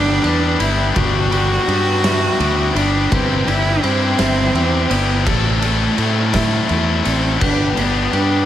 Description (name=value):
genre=post-rock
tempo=56 BPM (dotted quarters)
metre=6/8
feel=straight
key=G major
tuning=A4 = 438 Hz
part: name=warm cello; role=melody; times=0.0-8.5 s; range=A3 to F#4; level=-19 LUFS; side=right 2 dB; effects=digital delay
part: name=vibraphone with hard mallets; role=arpeggios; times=0.0-8.5 s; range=B4 to E5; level=-28 LUFS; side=right 4 dB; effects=digital delay
part: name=overdriven electric guitar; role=riff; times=0.0-8.5 s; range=G3 to A4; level=-20 LUFS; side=left 7 dB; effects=none
part: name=fuzz fingered electric bass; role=bass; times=0.0-8.4 s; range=G1 to A2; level=-20 LUFS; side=equal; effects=overdrive
part: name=oversized low-tuned drum kit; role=drums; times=0.2-8.3 s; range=crash cymbal, kick drum, ride cymbal, snare drum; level=-22 LUFS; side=right 1 dB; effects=none
room=studio ambience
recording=none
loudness=-14 LUFS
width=side -11 dB against mid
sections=0.0-8.5 A section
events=none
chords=0.0 Gmaj7; 3.1 Cmaj7/G; 5.3 Am; 7.4 G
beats=| 0.96 2.04 | 3.11 4.19 | 5.26 6.34 | 7.41